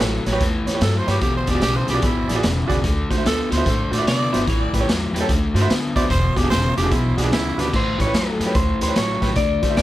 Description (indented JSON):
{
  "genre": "electric blues shuffle",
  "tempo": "147 BPM",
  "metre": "4/4",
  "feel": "swing 65% on 8ths",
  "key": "unclear",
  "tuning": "A4 = 440 Hz",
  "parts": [
    { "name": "overdriven semi-hollow guitar", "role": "riff", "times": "0.0-9.8 s", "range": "E2 to B3", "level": "-24 LUFS", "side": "left 3 dB", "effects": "none" },
    { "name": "upright bass", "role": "bass", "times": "0.0-9.8 s", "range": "E1 to C3", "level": "-24 LUFS", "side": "equal", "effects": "none" },
    { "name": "raw garage drum kit", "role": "drums", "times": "0.0-9.8 s", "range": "crash cymbal, hi-hat, kick drum, snare drum", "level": "-22 LUFS", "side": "equal", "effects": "none" },
    { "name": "bright upright piano", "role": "accompaniment", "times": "0.3-9.8 s", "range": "C#4 to D5", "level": "-26 LUFS", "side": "right 4 dB", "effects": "none" },
    { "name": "growling tenor saxophone", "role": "second line", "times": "0.8-7.7 s", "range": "D4 to D5", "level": "-25 LUFS", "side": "right 2 dB", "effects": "digital delay" },
    { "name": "electric guitar through a small old amp", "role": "melody", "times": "7.8-9.8 s", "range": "A4 to D5", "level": "-24 LUFS", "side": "left 2 dB", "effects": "none" }
  ],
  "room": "light reverb",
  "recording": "none",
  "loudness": "-17 LUFS",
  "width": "side -14 dB against mid",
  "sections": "0.0-7.7 A section; 7.7-9.8 B section",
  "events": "tenor saxophone solo 0.0-7.7",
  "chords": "0.0 A7; 1.2 E7; 2.8 D7; 4.5 A7; 5.3 D7; 6.1 E7; 7.7 A7"
}